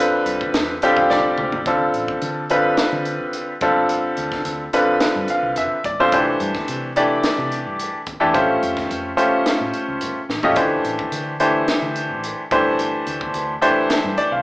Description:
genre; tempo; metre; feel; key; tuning
electric jazz fusion; 108 BPM; 4/4; straight; G mixolydian; A4 = 440 Hz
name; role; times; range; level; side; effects
bright grand piano; accompaniment; 0.0-14.4 s; D3 to G5; -18 LUFS; equal; none
hollow-body short-scale fingered electric bass; bass; 0.3-14.4 s; F1 to D3; -33 LUFS; equal; none
crisp fusion drum kit; drums; 0.3-14.3 s; hi-hat, kick drum, snare drum, toms; -25 LUFS; equal; none
room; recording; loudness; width
wet large studio reverb, RT60 1.1 s; band playing live in one room, small speaker sound; -17 LUFS; side -21 dB against mid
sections
0.0-1.7 A section; 1.7-14.4 B section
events
grand piano fill 0.5-1.7, 5.0-6.1, 13.9-14.4; drum fill 1.1-1.7, 10.3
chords
0.0 Fmaj7sus2; 1.7 Dm7; 3.6 G9sus4; 6.1 C; 8.3 A7alt; 10.6 D9sus4; 12.5 Gsus4

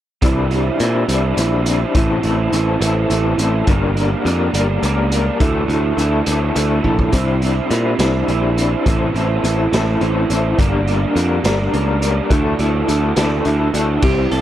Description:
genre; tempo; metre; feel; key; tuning
indie rock; 70 BPM (dotted quarters); 6/8; straight; C mixolydian; A4 = 440 Hz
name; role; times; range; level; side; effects
electric guitar through a small old amp; riff; 0.2-14.4 s; G2 to Bb4; -21 LUFS; left 4 dB; tremolo
raw garage guitar; riff; 0.2-14.4 s; C3 to E4; -21 LUFS; right 6 dB; overdrive, ensemble chorus, tape echo
modern bright picked electric bass; bass; 0.2-14.4 s; G1 to Bb2; -18 LUFS; equal; none
raw garage drum kit; drums; 0.2-14.4 s; crash cymbal, hi-hat, kick drum, snare drum; -21 LUFS; equal; none
clean electric guitar; melody; 14.0-14.4 s; G4 to A4; -19 LUFS; left 1 dB; none
room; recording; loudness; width
little or no reverb; none; -14 LUFS; side -12 dB against mid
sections
0.2-14.0 A section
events
drum fill 6.8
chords
0.2 Cadd9; 2.0 Am; 3.7 Gm; 5.4 Dsus2; 7.1 Cadd9; 8.9 Am; 10.6 Gm; 12.3 Dsus2

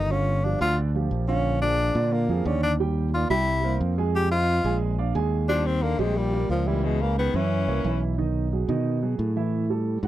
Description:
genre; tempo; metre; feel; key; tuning
jazz; 178 BPM; 4/4; straight; unclear; A4 = 441 Hz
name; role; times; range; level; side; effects
breathy tenor saxophone; melody; 0.0-8.0 s; F3 to G4; -26 LUFS; left 2 dB; none
dark baby grand piano; accompaniment; 0.0-10.1 s; D3 to Ab5; -29 LUFS; right 8 dB; none
modern bright fingered electric bass; bass; 0.0-10.1 s; G1 to B2; -25 LUFS; equal; none
warm baritone saxophone; second line; 5.5-8.0 s; Bb2 to F3; -32 LUFS; left 11 dB; none
room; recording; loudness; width
little or no reverb; dry, close 1970s-style studio recording; -22 LUFS; side -14 dB against mid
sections
0.0-5.5 A section; 5.5-10.1 B section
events
tenor saxophone solo 0.0-5.5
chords
0.1 Gm7; 1.5 Bb7; 2.8 Ebmaj7; 3.5 C7; 4.1 Fm7; 4.8 Bb7; 5.5 Ebmaj7; 6.8 Dbm7; 7.5 Gb7; 8.2 B6; 9.5 A5

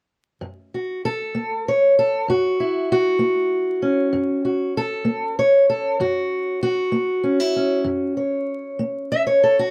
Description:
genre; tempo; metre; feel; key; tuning
acoustic country blues, solo or duo; 64 BPM (dotted quarters); 12/8; straight; F# mixolydian; A4 = 440 Hz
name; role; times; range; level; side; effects
fingerpicked steel-string acoustic guitar; solo; 0.4-9.7 s; F#2 to E5; -20 LUFS; equal; none
room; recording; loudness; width
light reverb; close, detailed microphones, vinyl crackle; -21 LUFS; mono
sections
0.4-9.7 A section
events
none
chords
0.4 F#7

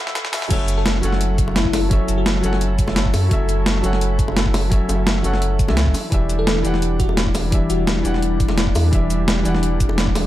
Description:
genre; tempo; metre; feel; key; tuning
liquid drum and bass; 171 BPM; 4/4; straight; F# phrygian; A4 = 440 Hz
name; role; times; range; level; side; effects
felt-muted upright piano; accompaniment; 0.0-10.3 s; E3 to F#5; -24 LUFS; left 1 dB; ping-pong delay
lush unison pad; sustained chords; 0.0-10.3 s; E3 to E5; -26 LUFS; equal; chorus, sidechain pumping
breakbeat sampler-style drum kit; drums; 0.1-10.2 s; cabasa, crash cymbal, hi-hat, snare drum; -22 LUFS; equal; high-pass filter on snare, high-pass filter on hats, high-pass filter on perc, high-pass filter on cymbals, high-pass filter on room
sub bass with octave; bass; 0.5-10.3 s; E1 to F#2; -20 LUFS; equal; none
electronic kick drum; drums; 0.5-10.1 s; none; -20 LUFS; equal; none
bell-like FM electric piano; melody; 0.8-2.7, 6.4-8.2 s; E4 to A4; -27 LUFS; left 4 dB; chorus, phaser, digital delay
bongos; percussion; 1.5-10.2 s; none; -30 LUFS; equal; none
room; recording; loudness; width
little or no reverb; dark, warm production, high-pass filter; -16 LUFS; side -14 dB against mid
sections
0.5-10.3 A section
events
drum fill 0.0-0.5; drop 0.5-10.3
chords
0.0 F#m7; 5.9 Em7

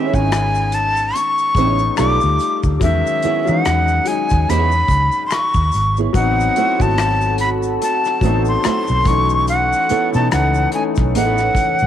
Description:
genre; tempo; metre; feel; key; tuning
R&B, neo-soul; 72 BPM; 4/4; swing 58% on 16ths; E major; A4 = 440 Hz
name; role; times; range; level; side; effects
breathy bright jazz flute; melody; 0.0-11.9 s; E5 to D6; -18 LUFS; equal; none
flamenco guitar; second line; 0.0-11.4 s; A3 to D5; -24 LUFS; right 11 dB; none
clear concert grand piano; accompaniment; 0.0-11.9 s; D#3 to F#4; -23 LUFS; left 9 dB; none
vintage muted fingered electric bass; bass; 0.1-11.9 s; G#1 to E3; -19 LUFS; equal; none
unplugged drum kit; drums; 0.1-11.8 s; hi-hat, kick drum, rim click; -22 LUFS; left 1 dB; none
egg shaker and finger snaps; percussion; 0.1-11.9 s; none; -34 LUFS; left 11 dB; none
deep dark ambient pad; sustained chords; 7.0-11.9 s; E3 to A5; -25 LUFS; right 1 dB; chorus, built-in reverb
room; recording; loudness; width
moderate spring reverb, RT60 2.7 s; 1960s-style stereo with parts hard left and right, vinyl crackle; -14 LUFS; side -10 dB against mid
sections
0.0-11.9 A section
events
none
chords
0.0 Amaj7; 2.0 B7alt; 2.8 E6; 6.1 Am6; 9.1 B9sus4

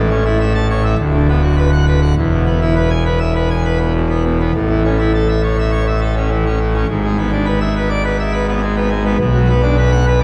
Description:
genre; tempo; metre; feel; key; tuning
classical, organ toccata; 102 BPM; 4/4; straight; unclear; A4 = 436 Hz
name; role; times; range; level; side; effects
pipe organ, full organ; solo; 0.0-10.2 s; D1 to A5; -15 LUFS; equal; none
room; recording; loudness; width
wet cathedral reverb, RT60 4.3 s; dark, warm production, lossy compression artefacts; -15 LUFS; mono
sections
0.0-10.2 A section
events
none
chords
0.0 A; 1.0 Bm/D; 2.2 E; 4.5 A; 6.9 E7/G#; 9.2 Bm

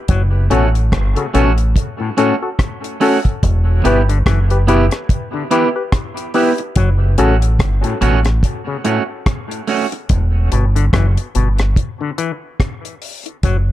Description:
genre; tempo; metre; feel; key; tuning
dub reggae; 72 BPM; 4/4; swing 58% on 16ths; E dorian; A4 = 440 Hz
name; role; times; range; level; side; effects
overdriven clav; arpeggios; 0.1-13.6 s; A2 to F#3; -24 LUFS; left 5 dB; auto-wah, dub echo
deep dub fingered electric bass; bass; 0.1-13.7 s; E1 to A1; -14 LUFS; equal; none
deep reggae drum kit; drums; 0.1-13.7 s; hi-hat, kick drum, rim click; -18 LUFS; equal; none
electric guitar at the edge of break-up; accompaniment; 0.5-10.0 s; A3 to G4; -21 LUFS; right 7 dB; dub echo
percussive organ stab; stabs; 0.5-7.3 s; C#4 to B4; -20 LUFS; left 4 dB; chorus, dub echo
room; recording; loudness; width
light reverb, studio ambience; dark, warm production; -13 LUFS; side -14 dB against mid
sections
0.0-13.7 A section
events
none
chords
0.1 F#m; 3.4 Em; 6.8 F#m; 10.1 Em

